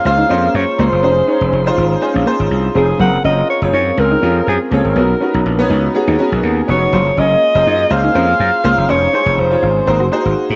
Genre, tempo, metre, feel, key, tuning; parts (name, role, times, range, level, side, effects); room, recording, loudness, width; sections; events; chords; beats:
pop; 122 BPM; 4/4; swing 54% on 16ths; A4 = 440 Hz
breathy alto saxophone; melody; 0.0-10.6 s; Ab4 to Gb5; -18 LUFS; equal; cassette tape
bright baby grand piano; accompaniment; 0.0-10.6 s; Bb3 to Db5; -20 LUFS; equal; analog chorus, cassette tape
mellow electric guitar; riff; 0.0-10.2 s; Gb3 to Gb4; -23 LUFS; equal; subtle chorus, cassette tape
gritty slap bass; bass; 0.1-10.6 s; F1 to Ab2; -19 LUFS; equal; overdrive
moderate spring reverb, RT60 1.4 s, studio ambience; home recording on cassette, vinyl crackle, nothing above 7.8 kHz; -14 LUFS; mono
0.0-10.6 A section
0.0 Gbmaj9#11; 1.0 Dbmaj7/F; 3.0 Gbmaj9#11; 5.0 Cbmaj7; 6.9 Gbmaj9#11; 8.9 Dbmaj7/F; 9.9 Ab7
0.05 0.55 | 1.04 1.53 2.02 2.51 | 3.00 3.49 3.98 4.47 | 4.96 5.46 5.95 6.44 | 6.93 7.42 7.91 8.40 | 8.89 9.38 9.87 10.36